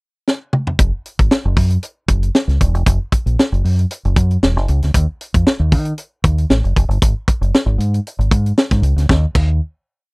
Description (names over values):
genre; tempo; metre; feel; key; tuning
polished 1980s jazz-funk pop; 116 BPM; 4/4; swing 54% on 16ths; unclear; A4 = 435 Hz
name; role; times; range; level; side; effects
tight funk drum kit; drums; 0.3-9.5 s; crash cymbal, hi-hat, kick drum, snare drum, toms; -15 LUFS; equal; none
deep dub fingered electric bass; bass; 0.8-9.6 s; Fb1 to Eb3; -15 LUFS; equal; none
room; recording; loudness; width
light reverb; dry, close 1970s-style studio recording; -14 LUFS; side -34 dB against mid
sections
0.0-0.8 pickup bar; 0.8-9.1 pre-chorus; 9.1-10.1 final chord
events
drum fill 0.3-0.8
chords
none